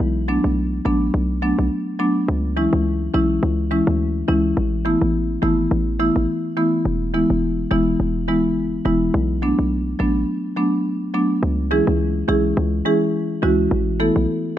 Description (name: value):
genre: dancehall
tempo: 105 BPM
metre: 4/4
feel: swing 56% on 16ths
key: C# phrygian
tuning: A4 = 440 Hz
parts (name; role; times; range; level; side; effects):
- short 808-style bass; bass; 0.0-14.3 s; E1 to D2; -22 LUFS; equal; none
- marimba with medium mallets; accompaniment; 0.3-14.1 s; E3 to A4; -19 LUFS; equal; none
room: light reverb, studio reverb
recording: none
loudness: -17 LUFS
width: side -12 dB against mid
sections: 0.0-11.4 A section; 11.4-14.6 B section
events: none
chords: 0.0 Bm7; 2.3 C#m; 4.6 Asus2; 6.9 E; 9.1 Bm7; 11.4 C#m; 13.7 Asus2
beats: | 0.00 0.57 1.14 1.71 | 2.28 2.85 3.43 4.00 | 4.57 5.14 5.71 6.28 | 6.86 7.43 8.00 8.57 | 9.14 9.71 10.28 10.86 | 11.43 12.00 12.57 13.14 | 13.71